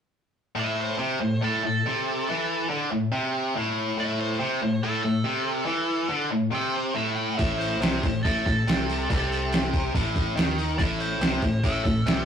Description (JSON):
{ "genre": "blues rock power trio and southern rock", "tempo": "141 BPM", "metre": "4/4", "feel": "straight", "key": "unclear", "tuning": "A4 = 440 Hz", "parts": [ { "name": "nasal lead guitar with a parked wah", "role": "melody", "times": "0.6-12.2 s", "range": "A4 to G5", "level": "-30 LUFS", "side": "right 1 dB", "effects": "overdrive" }, { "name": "tight distorted guitar", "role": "riff", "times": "0.6-12.2 s", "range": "A2 to E3", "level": "-25 LUFS", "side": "left 1 dB", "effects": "distortion" }, { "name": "fuzz fingered electric bass", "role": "bass", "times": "7.4-12.2 s", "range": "A1 to D#2", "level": "-31 LUFS", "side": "equal", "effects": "overdrive" }, { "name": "dusty soul sampler-style drum kit", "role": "drums", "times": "7.4-12.2 s", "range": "hi-hat, kick drum, snare drum", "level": "-26 LUFS", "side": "right 1 dB", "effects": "overdrive" } ], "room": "wet studio reverb, RT60 0.6 s", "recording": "rough rehearsal-room recording, tube saturation", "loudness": "-23 LUFS", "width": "side -8 dB against mid", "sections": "0.6-12.2 A section", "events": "none", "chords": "0.6 A5", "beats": "| 0.57 1.00 1.42 1.85 | 2.27 2.70 3.12 3.55 | 3.97 4.40 4.83 5.25 | 5.68 6.10 6.53 6.96 | 7.38 7.81 8.23 8.66 | 9.09 9.51 9.94 10.37 | 10.79 11.22 11.64 12.07" }